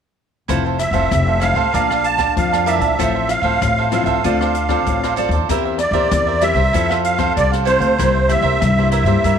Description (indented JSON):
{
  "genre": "samba and choro",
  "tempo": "96 BPM",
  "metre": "4/4",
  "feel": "straight",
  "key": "F major",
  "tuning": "A4 = 443 Hz",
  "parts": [
    { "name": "cavaquinho", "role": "accompaniment", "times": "0.5-9.4 s", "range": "E4 to A5", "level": "-21 LUFS", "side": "right 10 dB", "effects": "none" },
    { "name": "nylon-string guitar", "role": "accompaniment", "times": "0.5-9.4 s", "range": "G2 to Bb4", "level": "-23 LUFS", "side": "left 12 dB", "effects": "none" },
    { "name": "upright bass", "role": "bass", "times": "0.5-9.4 s", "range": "F1 to G2", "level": "-20 LUFS", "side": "left 1 dB", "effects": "none" },
    { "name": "open jazz drum kit", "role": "drums", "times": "0.5-9.4 s", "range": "hi-hat, kick drum, rim click", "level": "-25 LUFS", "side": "left 4 dB", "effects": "none" },
    { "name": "musette accordion", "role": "melody", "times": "0.8-9.4 s", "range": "C5 to A5", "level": "-18 LUFS", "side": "right 3 dB", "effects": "none" }
  ],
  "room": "moderate echo chamber reverb, RT60 2.2 s",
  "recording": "1960s-style stereo with parts hard left and right",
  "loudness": "-14 LUFS",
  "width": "side -7 dB against mid",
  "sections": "0.5-9.4 A section",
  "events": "none",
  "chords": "0.5 Fmaj7; 1.7 Bbmaj7#11; 3.0 Fmaj7/A; 4.2 Dm7; 5.5 C7/E; 6.7 Fmaj7; 8.0 C7"
}